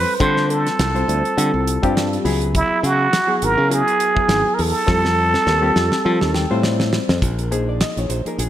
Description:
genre	electric jazz fusion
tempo	103 BPM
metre	4/4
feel	swing 55% on 16ths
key	unclear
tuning	A4 = 440 Hz
part	trumpet with plunger mute	melody	0.0-6.6 s	E4 to C5	-19 LUFS	right 2 dB	none
part	barky reed electric piano	accompaniment	0.0-8.5 s	F3 to B5	-23 LUFS	left 2 dB	overdrive, lush chorus
part	modern bright fingered electric bass	bass	0.0-8.5 s	G#1 to F3	-20 LUFS	equal	none
part	damped 70s drum kit	drums	0.2-8.5 s	hi-hat, kick drum, snare drum	-23 LUFS	equal	none
room	moderate lush hall reverb, RT60 2.1 s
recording	bright 1980s-style digital production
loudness	-15 LUFS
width	side -11 dB against mid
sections	0.0-7.2 A section; 7.2-8.5 B section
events	reed electric piano fill 1.7-2.5, 6.1-7.2; drum fill 4.9-7.2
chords	0.0 Dm7; 2.3 C#m7; 4.9 F13; 7.2 Bb7sus4

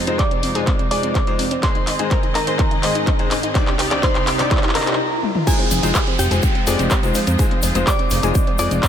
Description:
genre	progressive house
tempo	125 BPM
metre	4/4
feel	straight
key	F dorian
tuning	A4 = 437 Hz
part	rich symphonic string section	sustained chords	0.0-8.9 s	C2 to Eb5	-26 LUFS	right 1 dB	sidechain pumping
part	analog pluck	arpeggios	0.0-8.9 s	C4 to F5	-27 LUFS	right 1 dB	chorus, cassette tape, sidechain pumping, dub echo
part	riser and downlifter	sound effects	1.8-8.9 s	none	-28 LUFS	right 1 dB	none
part	clear baby grand piano	stabs	0.1-8.8 s	C3 to Eb5	-24 LUFS	left 4 dB	sidechain pumping, low-pass filter, dub echo
part	house drum kit	drums	0.1-8.9 s	crash cymbal, handclaps, hi-hat, toms	-24 LUFS	left 1 dB	sidechain pumping on hats, sidechain pumping on toms, sidechain pumping on cymbals
part	glassy synth bell	melody	0.2-8.9 s	G4 to D6	-25 LUFS	equal	chorus, tremolo, low-pass filter, dub echo
part	electronic kick drum	drums	0.2-8.9 s	none	-19 LUFS	equal	none
part	egg shaker	percussion	5.5-8.9 s	none	-30 LUFS	left 4 dB	none
part	fat analog bass	bass	5.7-8.8 s	F1 to F2	-20 LUFS	equal	sidechain pumping
room	light reverb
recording	none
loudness	-16 LUFS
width	side -9 dB against mid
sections	0.0-5.5 A section; 5.5-8.9 B section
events	build-up 0.0-5.5; drum fill 0.0-5.0, 5.2; filter sweep on synth bell 0.0-5.5; riser 1.8-5.5; break 5.0-5.5; drop 5.5-8.9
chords	0.0 Fm7; 1.6 Ab; 3.6 Cmadd9; 5.5 Fm7

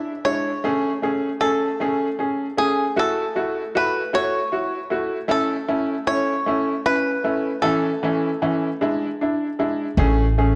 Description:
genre	six-eight pop ballad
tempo	51 BPM (dotted quarters)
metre	6/8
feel	straight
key	A major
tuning	A4 = 440 Hz
part	bluegrass banjo	melody	0.0-8.8 s	G#4 to E5	-26 LUFS	equal	slapback echo
part	bright upright piano	accompaniment	0.0-10.6 s	E3 to G#4	-24 LUFS	equal	none
part	upright bass	bass	10.0-10.6 s	A1	-19 LUFS	equal	none
room	moderate plate reverb, RT60 3.0 s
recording	nothing above 10.8 kHz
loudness	-22 LUFS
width	mono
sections	0.0-10.0 A section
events	none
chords	0.0 E7; 0.6 Amaj7; 3.0 F#m7; 5.3 A; 7.6 A/E; 8.8 E7; 10.0 Amaj7

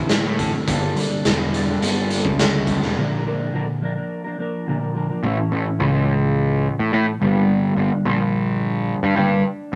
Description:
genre	psychedelic rock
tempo	106 BPM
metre	4/4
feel	straight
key	unclear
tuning	A4 = 440 Hz
part	mellow electric guitar	riff	0.0-9.8 s	G2 to Bb4	-24 LUFS	equal	phaser
part	fuzz picked electric bass	bass	0.0-9.8 s	E1 to A2	-23 LUFS	equal	overdrive
part	raw garage drum kit	drums	0.1-2.9 s	hi-hat, kick drum, snare drum	-24 LUFS	equal	none
room	moderate studio reverb, RT60 0.8 s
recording	none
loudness	-20 LUFS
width	mono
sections	0.0-5.2 A section; 5.2-9.8 B section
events	break 3.0-5.2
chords	0.0 Asus4; 0.7 Gmadd9; 3.0 Bb; 5.2 A; 7.2 Gm

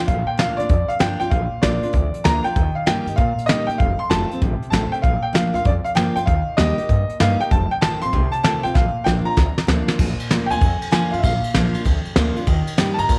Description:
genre	rockabilly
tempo	194 BPM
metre	4/4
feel	swing 65% on 8ths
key	Bb major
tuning	A4 = 440 Hz
part	picked steel-string acoustic guitar	accompaniment	0.0-13.2 s	F2 to G4	-27 LUFS	equal	none
part	bright upright piano	melody	0.1-13.2 s	D5 to C6	-25 LUFS	equal	none
part	upright bass	bass	0.1-13.2 s	F1 to C3	-26 LUFS	equal	none
part	soft brush drum kit	drums	0.1-13.2 s	crash cymbal, hi-hat, kick drum, ride cymbal, snare drum	-23 LUFS	equal	none
room	light reverb, studio reverb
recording	none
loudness	-19 LUFS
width	mono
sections	0.1-10.0 A section; 10.0-13.2 B section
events	drum fill 8.8-10.0; upright piano solo 10.0-13.2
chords	0.1 Bb; 2.6 Eb; 3.8 F7; 5.0 Bb; 6.3 Eb; 7.5 F7; 8.8 Bb; 12.5 Eb

